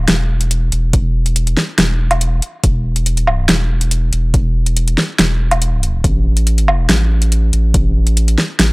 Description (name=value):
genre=deep dubstep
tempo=141 BPM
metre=4/4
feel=half-time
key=unclear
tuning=A4 = 440 Hz
part: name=saturated sub bass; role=bass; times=0.0-8.7 s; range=E1 to A1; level=-14 LUFS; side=equal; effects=transformer saturation
part: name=deep house drum kit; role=drums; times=0.1-8.7 s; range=hi-hat, snare drum, woodblock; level=-16 LUFS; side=equal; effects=overdrive
part: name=electronic kick drum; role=drums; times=0.9-7.8 s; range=none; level=-16 LUFS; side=equal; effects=none
room=little or no reverb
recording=dry, gritty hardware recording, transformer saturation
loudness=-12 LUFS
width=side -25 dB against mid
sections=0.0-8.7 A section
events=none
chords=none